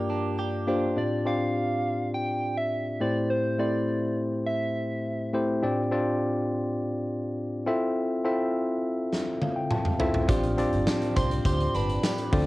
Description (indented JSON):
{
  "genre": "1980s-style pop",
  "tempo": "103 BPM",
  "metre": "4/4",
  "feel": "straight",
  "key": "unclear",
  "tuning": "A4 = 440 Hz",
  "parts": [
    { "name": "soft struck synth lead", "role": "melody", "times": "0.0-5.3, 11.2-12.3 s", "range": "Bb4 to C6", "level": "-31 LUFS", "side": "right 1 dB", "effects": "chorus, cassette tape" },
    { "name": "shimmering bell with halo", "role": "second line", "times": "0.0-0.4, 11.2-12.3 s", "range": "B4 to Bb5", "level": "-38 LUFS", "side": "right 2 dB", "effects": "ensemble chorus, cassette tape, tape echo" },
    { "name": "tine electric piano", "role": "accompaniment", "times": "0.0-12.5 s", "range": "G2 to A5", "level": "-26 LUFS", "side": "left 1 dB", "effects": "cassette tape" },
    { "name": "direct-recorded clean electric guitar", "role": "riff", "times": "0.0-1.5, 10.3-12.5 s", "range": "F3 to G4", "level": "-34 LUFS", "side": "right 4 dB", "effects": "wide subtle chorus, cassette tape, tape echo" },
    { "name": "big rock drum kit", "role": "drums", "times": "9.1-12.5 s", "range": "hi-hat, kick drum, snare drum, tambourine, toms", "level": "-28 LUFS", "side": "equal", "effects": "cassette tape" },
    { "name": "vintage muted fingered electric bass", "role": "bass", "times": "10.3-12.5 s", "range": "G1 to D2", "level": "-29 LUFS", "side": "equal", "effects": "none" }
  ],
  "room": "light reverb",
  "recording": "home recording on cassette",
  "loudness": "-25 LUFS",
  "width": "side -18 dB against mid",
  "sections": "1.0-12.5 A section",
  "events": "break 0.0-1.0; drum fill 9.1-10.3; tine electric piano fill 9.1-10.3",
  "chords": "0.0 Gm7; 1.0 G7sus4/A; 3.0 Am7; 5.6 G7sus4/A; 7.7 Fmaj7; 10.3 G7sus4"
}